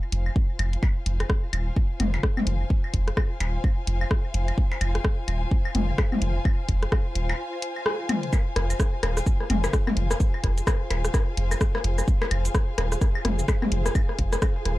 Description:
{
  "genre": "minimal techno",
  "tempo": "128 BPM",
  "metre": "4/4",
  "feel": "swing 60% on 16ths",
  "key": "F minor",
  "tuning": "A4 = 439 Hz",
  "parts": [
    { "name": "dark studio string section", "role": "texture", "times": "0.0-14.8 s", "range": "F4 to Ab5", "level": "-35 LUFS", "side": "left 2 dB", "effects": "sidechain pumping" },
    { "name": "punchy sub bass", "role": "bass", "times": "0.1-14.8 s", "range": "Eb1 to F1", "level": "-25 LUFS", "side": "equal", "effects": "tube saturation, sidechain pumping" },
    { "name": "house drum kit", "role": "drums", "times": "0.1-14.8 s", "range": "cabasa, hi-hat, rim click", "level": "-30 LUFS", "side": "left 1 dB", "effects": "none" },
    { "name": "minimal click drum kit", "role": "percussion", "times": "0.3-14.8 s", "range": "claves, percussion blips, rim click, toms", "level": "-29 LUFS", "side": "left 2 dB", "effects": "none" },
    { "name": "electronic kick drum", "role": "drums", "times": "0.4-14.5 s", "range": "none", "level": "-23 LUFS", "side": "equal", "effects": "none" },
    { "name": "flickering grainy texture", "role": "texture", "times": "8.7-14.8 s", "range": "Ab4", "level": "-40 LUFS", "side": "right 6 dB", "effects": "built-in reverb, sidechain pumping" }
  ],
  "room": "light reverb",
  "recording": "dark, warm production",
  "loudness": "-22 LUFS",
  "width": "side -17 dB against mid",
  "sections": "0.0-8.3 A section; 8.3-14.8 B section",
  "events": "fade-in on string section 0.0-8.3; break 7.4-8.3; band accent 7.9; drop 8.3-14.8",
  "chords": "0.0 Fm"
}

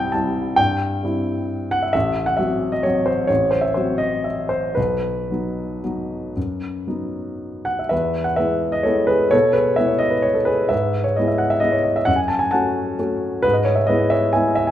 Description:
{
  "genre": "classical, piano waltz",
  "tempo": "111-141 BPM",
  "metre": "3/4",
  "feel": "rubato",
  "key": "E major",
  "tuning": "A4 = 440 Hz",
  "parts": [
    { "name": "warm grand piano", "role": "solo", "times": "0.0-14.7 s", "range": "A1 to A5", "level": "-18 LUFS", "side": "equal", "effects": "none" }
  ],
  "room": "moderate recital hall reverb, RT60 1.4 s",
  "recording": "none",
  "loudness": "-18 LUFS",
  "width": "side -11 dB against mid",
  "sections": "0.0-7.9 A section; 7.9-14.7 A section",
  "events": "none",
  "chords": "0.0 C; 1.9 F#dim/A; 4.8 B; 7.9 E; 10.7 E/G#; 12.1 F#m; 13.4 E/G#"
}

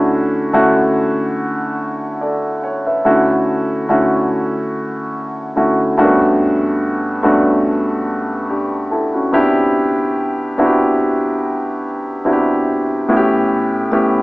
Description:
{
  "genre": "soul",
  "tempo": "72 BPM",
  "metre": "4/4",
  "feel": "swing 54% on 16ths",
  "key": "D major",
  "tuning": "A4 = 440 Hz",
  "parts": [
    { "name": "warm concert grand piano", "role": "solo", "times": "0.0-14.2 s", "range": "G2 to F#5", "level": "-14 LUFS", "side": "equal", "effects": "none" }
  ],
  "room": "moderate studio ambience, RT60 0.5 s",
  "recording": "band playing live in one room, small speaker sound",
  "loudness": "-14 LUFS",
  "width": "side -21 dB against mid",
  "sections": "0.0-14.2 A section",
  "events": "none",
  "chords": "0.0 Dmaj9; 6.0 Gmaj9#11; 9.3 Cmaj7; 13.1 A7"
}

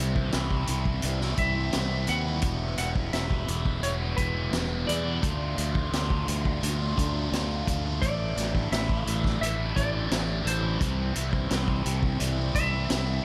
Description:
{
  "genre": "psychedelic rock",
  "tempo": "86 BPM",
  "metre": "4/4",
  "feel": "straight",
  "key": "unclear",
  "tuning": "A4 = 440 Hz",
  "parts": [
    { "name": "clean lap steel guitar", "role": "melody", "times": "0.0-13.2 s", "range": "B4 to F#5", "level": "-36 LUFS", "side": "equal", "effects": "analog delay" },
    { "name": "biting overdriven guitar", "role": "riff", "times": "0.0-13.2 s", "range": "E2 to F4", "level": "-33 LUFS", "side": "equal", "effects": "phaser" },
    { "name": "fuzz fingered electric bass", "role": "bass", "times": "0.0-13.2 s", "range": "E1 to E2", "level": "-32 LUFS", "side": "equal", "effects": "overdrive" },
    { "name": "vintage drum kit", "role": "drums", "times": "0.2-13.1 s", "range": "hi-hat, kick drum, snare drum", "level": "-32 LUFS", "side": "equal", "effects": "none" }
  ],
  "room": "little or no reverb",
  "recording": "none",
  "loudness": "-27 LUFS",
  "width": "mono",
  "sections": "0.0-13.2 A section",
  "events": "none",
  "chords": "0.0 C; 2.4 Em; 5.2 Dm; 8.0 Asus4; 10.8 C"
}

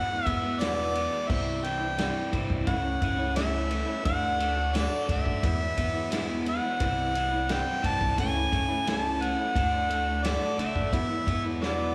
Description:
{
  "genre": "folk rock and heartland rock",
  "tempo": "87 BPM",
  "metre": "4/4",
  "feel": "straight",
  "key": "E mixolydian",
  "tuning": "A4 = 436 Hz",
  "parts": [
    { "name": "warm harmonica", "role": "melody", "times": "0.0-11.9 s", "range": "D5 to A5", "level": "-32 LUFS", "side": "equal", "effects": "slapback echo" },
    { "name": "picked steel-string acoustic guitar", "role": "accompaniment", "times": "0.0-11.9 s", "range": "E2 to F#4", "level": "-36 LUFS", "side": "equal", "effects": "slapback echo" },
    { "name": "crunchy overdriven guitar", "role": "riff", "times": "0.0-11.9 s", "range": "E2 to D4", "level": "-38 LUFS", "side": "equal", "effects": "none" },
    { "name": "upright bass", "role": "bass", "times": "0.0-11.9 s", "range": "A1 to E2", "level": "-35 LUFS", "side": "equal", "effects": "none" },
    { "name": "natural country drum kit", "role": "drums", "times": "0.3-11.8 s", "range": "crash cymbal, kick drum, ride cymbal, snare drum", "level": "-35 LUFS", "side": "equal", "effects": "none" }
  ],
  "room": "moderate lush hall reverb, RT60 2.7 s",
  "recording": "big arena sound",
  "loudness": "-28 LUFS",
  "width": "mono",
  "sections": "0.0-11.9 A section",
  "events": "drum fill 11.6-11.9",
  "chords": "0.0 Eadd9; 1.3 C; 2.7 A/C#; 4.1 D; 5.4 Eadd9; 6.8 C; 8.2 A/C#; 9.6 D; 10.9 Eadd9"
}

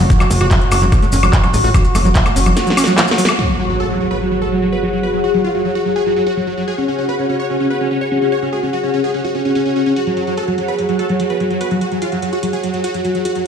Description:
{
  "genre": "psychedelic trance",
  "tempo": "146 BPM",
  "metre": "4/4",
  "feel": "straight",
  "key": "unclear",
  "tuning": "A4 = 435 Hz",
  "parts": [
    { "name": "overtone-sweeping drone", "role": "sustained chords", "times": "0.0-13.5 s", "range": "F#4 to G#4", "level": "-21 LUFS", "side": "left 3 dB", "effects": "chorus, built-in reverb, phaser, sidechain pumping" },
    { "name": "overdriven acid bass", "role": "riff", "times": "0.0-3.3 s", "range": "E#3 to F#4", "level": "-19 LUFS", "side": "equal", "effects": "distortion, auto-pan, sidechain pumping, tape echo" },
    { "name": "plucky analog bass", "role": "bass", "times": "0.0-2.5 s", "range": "F#1 to A1", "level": "-14 LUFS", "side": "equal", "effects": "none" },
    { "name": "maracas", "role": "percussion", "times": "0.0-3.4 s", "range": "none", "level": "-29 LUFS", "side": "left 3 dB", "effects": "none" },
    { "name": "granular cloud pad", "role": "texture", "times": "0.0-13.5 s", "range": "F#4 to F#5", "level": "-22 LUFS", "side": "right 2 dB", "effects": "built-in reverb, sidechain pumping" },
    { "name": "drum and bass drum kit", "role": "drums", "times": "0.1-13.4 s", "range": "crash cymbal, handclaps, hi-hat, snare drum, woodblock", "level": "-19 LUFS", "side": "equal", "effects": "low-pass filter on hats, low-pass filter on snare, low-pass filter on perc, low-pass filter on cymbals, low-pass filter on room" },
    { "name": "electronic kick drum", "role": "drums", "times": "0.1-2.2 s", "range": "none", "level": "-12 LUFS", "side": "equal", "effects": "none" },
    { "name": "dense compressed supersaw", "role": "melody", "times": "3.4-13.4 s", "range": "F#3 to C#5", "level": "-19 LUFS", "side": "equal", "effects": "phaser, sidechain pumping, tape echo" },
    { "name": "impact", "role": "sound effects", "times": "3.4-5.0 s", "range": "none", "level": "-23 LUFS", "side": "equal", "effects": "none" }
  ],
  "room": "moderate lush hall reverb, RT60 2.2 s",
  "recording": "played on a big sound system in a bare room, stone room reverb",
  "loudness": "-14 LUFS",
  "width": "side -7 dB against mid",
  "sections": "0.0-3.4 A section; 3.4-13.5 B section",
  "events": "drum fill 2.6-3.4; band accent 3.3; impact 3.4-5.0; filter sweep on drum 3.4-13.5; filter sweep on synth drone 3.4-13.5",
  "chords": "0.0 F#5"
}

